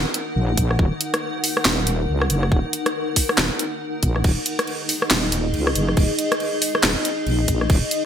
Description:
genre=deep dubstep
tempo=139 BPM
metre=4/4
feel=swing 61% on 16ths, half-time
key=Eb minor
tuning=A4 = 438 Hz
part: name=granular cloud pad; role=sustained chords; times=0.0-8.1 s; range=Eb4 to Gb5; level=-25 LUFS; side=left 1 dB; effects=built-in reverb
part: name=wobble bass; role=bass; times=0.0-7.8 s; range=Eb1 to Db2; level=-22 LUFS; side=equal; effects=chorus
part: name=garage drum kit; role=drums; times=0.1-8.0 s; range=crash cymbal, handclaps, hi-hat, rim click, snare drum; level=-22 LUFS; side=equal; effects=studio reverb, gated reverb
part: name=electronic kick drum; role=drums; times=0.6-7.8 s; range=none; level=-19 LUFS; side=equal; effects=studio reverb
room=light reverb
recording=bright 1980s-style digital production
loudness=-18 LUFS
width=side -9 dB against mid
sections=0.0-8.1 A section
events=none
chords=0.0 Eb5

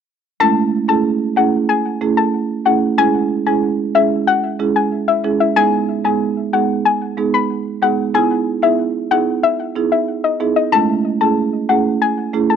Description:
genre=dancehall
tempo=93 BPM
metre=4/4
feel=straight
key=unclear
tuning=A4 = 444 Hz
part: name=soft round pluck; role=melody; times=0.4-12.6 s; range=D#5 to B5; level=-17 LUFS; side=left 8 dB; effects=chorus, cassette tape
part: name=marimba with medium mallets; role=accompaniment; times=0.4-12.6 s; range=G#3 to G#4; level=-17 LUFS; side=right 6 dB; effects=cassette tape
room=moderate booth ambience, RT60 0.2 s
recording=home recording on cassette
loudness=-14 LUFS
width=side -7 dB against mid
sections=0.4-12.6 A section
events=none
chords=0.4 Amaj7; 3.0 C#m; 5.6 G#m; 8.1 Emaj7; 10.7 Amaj7

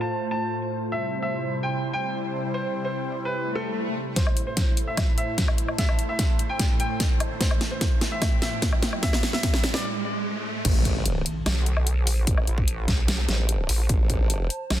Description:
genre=heavy wobble dubstep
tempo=148 BPM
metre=4/4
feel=half-time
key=A minor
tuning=A4 = 444 Hz
part: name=clear grand piano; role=melody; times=0.0-9.8 s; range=A4 to A5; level=-31 LUFS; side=equal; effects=low-pass filter, ping-pong delay
part: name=supersaw pad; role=sustained chords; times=0.0-10.6 s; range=A2 to C5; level=-33 LUFS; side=equal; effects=phaser, sidechain pumping
part: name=warbly tape-like pad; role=texture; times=0.0-14.8 s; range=A3 to A5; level=-36 LUFS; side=right 1 dB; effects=chorus, built-in reverb, sidechain pumping
part: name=swell, riser and impact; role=sound effects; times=3.5-12.3 s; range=none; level=-33 LUFS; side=equal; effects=none
part: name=dubstep drum kit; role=drums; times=4.2-14.8 s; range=crash cymbal, hi-hat, snare drum, woodblock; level=-27 LUFS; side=equal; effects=none
part: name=electronic kick drum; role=drums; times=4.2-14.2 s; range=none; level=-24 LUFS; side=equal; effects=none
part: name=formant-sweep wobble bass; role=bass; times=10.7-14.5 s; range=A1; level=-25 LUFS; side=equal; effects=chorus, overdrive
part: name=vowel-sweep wobble bass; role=bass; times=11.5-14.8 s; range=A1 to B1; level=-23 LUFS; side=equal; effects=chorus, overdrive
room=light reverb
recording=dense, heavily limited modern master, low-pass filter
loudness=-22 LUFS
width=side -12 dB against mid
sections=0.0-4.2 A section; 4.2-10.7 B section; 10.7-14.8 C section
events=filter sweep on supersaw synth 0.0-4.2; swell 3.5-4.2; build-up 4.2-10.7; drum fill 4.2-9.8; riser 4.2-10.7; break 9.8-10.7; drop 10.7-14.8; impact 10.7-12.3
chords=0.0 F/A; 0.9 C; 4.2 Am

